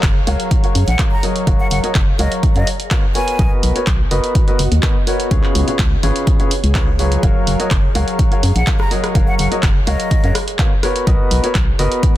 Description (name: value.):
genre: piano house.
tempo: 125 BPM.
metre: 4/4.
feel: straight.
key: F# major.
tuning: A4 = 438 Hz.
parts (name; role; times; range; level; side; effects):
organ-like FM bass; bass; 0.0-11.9 s; F#1 to F#2; -17 LUFS; equal; sidechain pumping.
electronic kick drum; drums; 0.0-12.1 s; none; -16 LUFS; equal; none.
punchy analog drum machine; drums; 0.0-12.1 s; handclaps, hi-hat, rim click; -24 LUFS; right 1 dB; none.
ethereal airy pad; texture; 0.0-12.2 s; B3 to E#5; -28 LUFS; equal; ensemble chorus, built-in reverb, sidechain pumping.
bright grand piano; riff; 0.3-12.1 s; C#3 to E#5; -21 LUFS; left 1 dB; sidechain pumping, low-pass filter, tape echo.
breathy mellow silver concert flute; melody; 0.9-3.5, 8.6-10.4 s; D#5 to A#5; -25 LUFS; equal; tape echo.
room: digital ambience.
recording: dense, heavily limited modern master.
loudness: -13 LUFS.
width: side -14 dB against mid.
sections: 0.0-12.2 A section.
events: none.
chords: 0.0 F#maj7; 5.3 C#7; 7.2 F#maj7.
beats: 0.03 0.51 0.99 | 1.47 1.95 2.43 2.91 | 3.39 3.87 4.35 4.83 | 5.31 5.79 6.27 6.75 | 7.23 7.71 8.19 8.67 | 9.15 9.63 10.11 10.59 | 11.07 11.55 12.03.